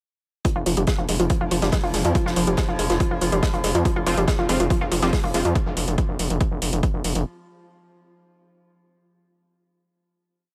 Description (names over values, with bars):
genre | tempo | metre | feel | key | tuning
driving peak-time techno | 141 BPM | 4/4 | straight | F minor | A4 = 440 Hz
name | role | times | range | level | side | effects
analog pluck | riff | 0.4-5.5 s | F3 to F4 | -27 LUFS | equal | chorus, overdrive, sidechain pumping, digital delay
metallic inharmonic drone | drone | 1.1-5.6 s | F3 | -34 LUFS | equal | chorus, built-in reverb, sidechain pumping
electronic hi-hat | drums | 0.4-7.2 s | none | -32 LUFS | equal | sidechain pumping on hats, small room ambience
electronic kick drum | drums | 0.4-6.9 s | none | -25 LUFS | equal | small room ambience
modern studio drum kit | drums | 0.5-5.5 s | hi-hat, snare drum | -37 LUFS | equal | sidechain pumping on hats, high-pass filter on hats, small room ambience, high-pass filter on snare, high-pass filter on room
gritty driven synth bass | bass | 0.6-7.2 s | F1 to F2 | -26 LUFS | equal | sidechain pumping
rave stab | stabs | 4.1-5.4 s | F3 to F4 | -30 LUFS | equal | chorus, built-in reverb, sidechain pumping, digital delay
room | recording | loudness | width
light reverb, small room ambience | none | -22 LUFS | mono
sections
0.4-7.3 groove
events
filter sweep on synth arpeggio sound 0.4-5.6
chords
0.4 F5